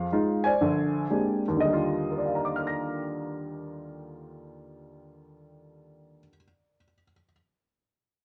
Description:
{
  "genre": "solo jazz",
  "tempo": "121 BPM",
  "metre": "4/4",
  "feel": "swing 66% on 8ths",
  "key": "Eb major",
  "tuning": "A4 = 440 Hz",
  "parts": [
    { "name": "warm upright piano", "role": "solo", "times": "0.0-7.3 s", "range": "Bb1 to Bb6", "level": "-28 LUFS", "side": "equal", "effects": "none" }
  ],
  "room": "wet studio reverb, RT60 0.6 s",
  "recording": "none",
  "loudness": "-27 LUFS",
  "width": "mono",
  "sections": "0.0-1.6 A section; 1.6-5.6 B section",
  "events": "none",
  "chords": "0.0 Fm7; 0.6 Bb13; 1.6 Ebmaj9"
}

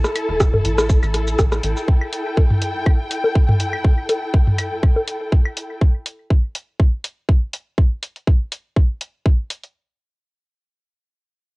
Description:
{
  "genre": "minimal techno",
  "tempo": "122 BPM",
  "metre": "4/4",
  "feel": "swing 54% on 16ths",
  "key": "unclear",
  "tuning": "A4 = 440 Hz",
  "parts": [
    { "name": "garage drum kit", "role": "drums", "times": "0.0-9.7 s", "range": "hi-hat, rim click, shaker", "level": "-24 LUFS", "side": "equal", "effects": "cassette tape" },
    { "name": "booming analog drum machine", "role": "percussion", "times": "0.0-5.5 s", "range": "bongos, claves, rim click, toms", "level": "-20 LUFS", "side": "equal", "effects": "cassette tape" },
    { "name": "warm symphonic string section", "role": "texture", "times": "0.0-5.8 s", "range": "E4 to A5", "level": "-25 LUFS", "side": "left 1 dB", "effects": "sidechain pumping, cassette tape" },
    { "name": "rubbery square bass", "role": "bass", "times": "0.3-1.7 s", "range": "E1 to A1", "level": "-22 LUFS", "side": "equal", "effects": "tube saturation, sidechain pumping" },
    { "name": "electronic kick drum", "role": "drums", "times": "0.4-9.4 s", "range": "none", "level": "-14 LUFS", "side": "equal", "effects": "cassette tape" }
  ],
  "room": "little or no reverb",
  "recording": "home recording on cassette",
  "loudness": "-16 LUFS",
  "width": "side -25 dB against mid",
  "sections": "0.0-9.7 A section",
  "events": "filter sweep on analog synth bass 0.0-1.9",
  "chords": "0.0 A5"
}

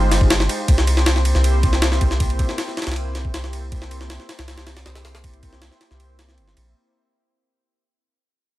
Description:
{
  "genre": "drum and bass, jungle",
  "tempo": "158 BPM",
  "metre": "4/4",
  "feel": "straight",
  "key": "unclear",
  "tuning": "A4 = 440 Hz",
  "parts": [
    { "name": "lush unison pad", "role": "sustained chords", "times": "0.0-6.7 s", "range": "Ab3 to C5", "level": "-27 LUFS", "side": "equal", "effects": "chorus" },
    { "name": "soft dub sub bass", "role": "bass", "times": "0.0-6.7 s", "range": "G1 to C2", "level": "-20 LUFS", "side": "equal", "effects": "none" },
    { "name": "jungle sampler-style drum kit", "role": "drums", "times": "0.1-6.7 s", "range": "kick drum, ride cymbal, snare drum", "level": "-20 LUFS", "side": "equal", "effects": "none" }
  ],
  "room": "little or no reverb",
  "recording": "none",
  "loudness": "-17 LUFS",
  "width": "side -16 dB against mid",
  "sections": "0.0-6.8 A section",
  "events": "fade-out 0.0-6.8",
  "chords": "0.0 Fm9; 0.7 C7"
}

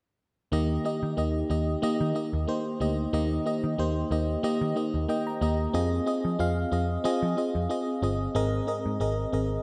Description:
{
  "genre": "pop",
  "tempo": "92 BPM",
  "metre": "4/4",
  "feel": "swing 55% on 16ths",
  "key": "Eb major",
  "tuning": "A4 = 441 Hz",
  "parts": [
    { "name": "FM electric piano", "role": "accompaniment", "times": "0.5-9.6 s", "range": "Ab2 to Bb5", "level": "-30 LUFS", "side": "equal", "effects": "chorus" },
    { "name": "vintage muted picked electric bass", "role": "bass", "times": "0.5-9.6 s", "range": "G1 to F3", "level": "-31 LUFS", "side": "equal", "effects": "none" }
  ],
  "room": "wet lush hall reverb, RT60 2.5 s",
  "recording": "bright 1980s-style digital production",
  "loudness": "-28 LUFS",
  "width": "mono",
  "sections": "0.5-9.6 A section",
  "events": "FM electric piano fill 4.8-5.7",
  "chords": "0.5 Eb; 5.7 Fm7; 8.3 Abadd9"
}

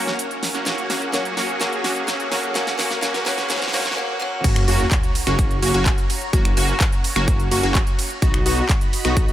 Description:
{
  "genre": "EDM, festival progressive house",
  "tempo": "127 BPM",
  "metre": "4/4",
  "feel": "straight",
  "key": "F# major",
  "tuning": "A4 = 440 Hz",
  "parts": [
    { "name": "picked old ladder-braced acoustic guitar", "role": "accompaniment", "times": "0.0-4.4 s", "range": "F#3 to F#4", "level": "-26 LUFS", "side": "equal", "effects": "sidechain pumping, digital delay" },
    { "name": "lush unison pad", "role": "sustained chords", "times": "0.0-9.3 s", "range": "F#3 to B5", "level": "-32 LUFS", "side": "equal", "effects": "chorus, phaser, sidechain pumping" },
    { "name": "supersaw stab", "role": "riff", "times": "0.0-9.3 s", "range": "A#3 to F#4", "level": "-25 LUFS", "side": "right 1 dB", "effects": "cassette tape, sidechain pumping, digital delay" },
    { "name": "riser and sub drop", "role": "sound effects", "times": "0.4-6.3 s", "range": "none", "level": "-30 LUFS", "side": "equal", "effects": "none" },
    { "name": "big-room dance drum kit", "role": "drums", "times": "0.1-9.3 s", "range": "crash cymbal, finger snaps, handclaps, hi-hat, ride cymbal, snare drum", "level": "-25 LUFS", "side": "right 1 dB", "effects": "none" },
    { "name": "plucky unison lead", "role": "arpeggios", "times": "4.4-9.3 s", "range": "F#4", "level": "-25 LUFS", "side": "left 1 dB", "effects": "sidechain pumping, digital delay" },
    { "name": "wide detuned saw bass", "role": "bass", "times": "4.4-9.3 s", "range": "F#1 to B1", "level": "-23 LUFS", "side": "equal", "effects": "chorus, sidechain pumping" },
    { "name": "electronic kick drum", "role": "drums", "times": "4.4-9.3 s", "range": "none", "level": "-19 LUFS", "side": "equal", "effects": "none" }
  ],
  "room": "light reverb, digital ambience",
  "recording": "high-pass filter",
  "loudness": "-18 LUFS",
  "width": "side -12 dB against mid",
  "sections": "0.0-4.4 A section; 4.4-9.3 B section",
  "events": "build-up 0.0-4.4; drum fill 0.0-4.0; break 4.0-4.4; drop 4.4-9.3; impact 4.4-6.3",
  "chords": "0.0 F#; 0.7 C#sus4; 4.4 F#; 8.2 B"
}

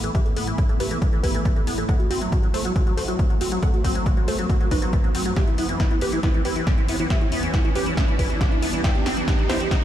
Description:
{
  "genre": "uplifting trance",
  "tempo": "138 BPM",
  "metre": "4/4",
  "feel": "straight",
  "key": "E minor",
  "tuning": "A4 = 440 Hz",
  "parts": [
    { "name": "wide unison pluck", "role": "melody", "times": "0.0-9.8 s", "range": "D#4 to G5", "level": "-28 LUFS", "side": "right 1 dB", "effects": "vintage 12-bit sampler grit, sidechain pumping, tape echo" },
    { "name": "shimmering ambient pad", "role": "sustained chords", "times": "0.0-9.8 s", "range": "C2 to E5", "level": "-30 LUFS", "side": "equal", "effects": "chorus, built-in reverb, sidechain pumping" },
    { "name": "liquid acid bass", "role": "arpeggios", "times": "0.0-9.8 s", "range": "E3 to G4", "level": "-30 LUFS", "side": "left 1 dB", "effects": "wide subtle chorus, sidechain pumping, tape echo" },
    { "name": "punchy analog drum machine", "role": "drums", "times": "0.0-9.8 s", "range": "hi-hat, snare drum", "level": "-32 LUFS", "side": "left 2 dB", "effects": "overdrive, high-pass filter on hats, high-pass filter on snare" },
    { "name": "riser", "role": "sound effects", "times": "0.7-9.8 s", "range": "none", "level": "-33 LUFS", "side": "right 3 dB", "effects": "none" },
    { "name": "electronic kick drum", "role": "drums", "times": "0.1-9.8 s", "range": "none", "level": "-21 LUFS", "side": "equal", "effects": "overdrive" }
  ],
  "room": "little or no reverb",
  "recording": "played on a big sound system in a bare room, stone room reverb, faint mains hum",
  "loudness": "-19 LUFS",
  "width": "side -11 dB against mid",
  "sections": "0.0-9.8 A section",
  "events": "build-up 0.0-9.8; filter sweep on synth pluck 0.0-9.8; riser 0.7-9.8; drum fill 5.4-9.8",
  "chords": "0.0 Asus2; 1.9 F#dim; 5.4 Em; 8.8 C"
}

